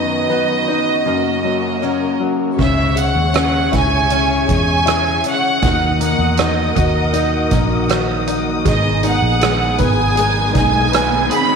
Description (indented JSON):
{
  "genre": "pop ballad",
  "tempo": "79 BPM",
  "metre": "4/4",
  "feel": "straight",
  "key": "unclear",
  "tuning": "A4 = 440 Hz",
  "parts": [
    { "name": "clear studio violin section", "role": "melody", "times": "0.0-11.6 s", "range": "D#5 to B5", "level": "-18 LUFS", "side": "right 2 dB", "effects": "slapback echo" },
    { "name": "clear baby grand piano", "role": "accompaniment", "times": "0.0-11.6 s", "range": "F#2 to B4", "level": "-20 LUFS", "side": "left 11 dB", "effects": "none" },
    { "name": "warm studio string section", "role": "sustained chords", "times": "0.0-11.6 s", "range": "F#2 to D#6", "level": "-25 LUFS", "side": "left 1 dB", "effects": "none" },
    { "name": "picked steel-string acoustic guitar", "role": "arpeggios", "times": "0.0-11.6 s", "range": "F#2 to A#4", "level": "-24 LUFS", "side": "right 11 dB", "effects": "slapback echo" },
    { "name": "vintage muted fingered electric bass", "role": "bass", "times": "2.6-11.3 s", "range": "G#1 to E2", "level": "-20 LUFS", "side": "equal", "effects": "none" },
    { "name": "soft-mallet drum kit", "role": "drums", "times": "2.6-11.5 s", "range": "crash cymbal, hi-hat, kick drum, rim click", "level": "-21 LUFS", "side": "right 4 dB", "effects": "none" },
    { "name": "riser", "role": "sound effects", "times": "9.9-11.6 s", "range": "none", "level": "-25 LUFS", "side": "right 2 dB", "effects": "none" }
  ],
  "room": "light reverb, small room ambience",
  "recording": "1960s-style stereo with parts hard left and right",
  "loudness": "-14 LUFS",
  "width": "side -6 dB against mid",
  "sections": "0.0-2.6 A section; 2.6-11.6 B section",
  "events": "riser 9.9-11.6",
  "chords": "0.0 B/F#; 1.1 F#; 2.6 C#m; 5.6 D#m; 8.7 G#madd9"
}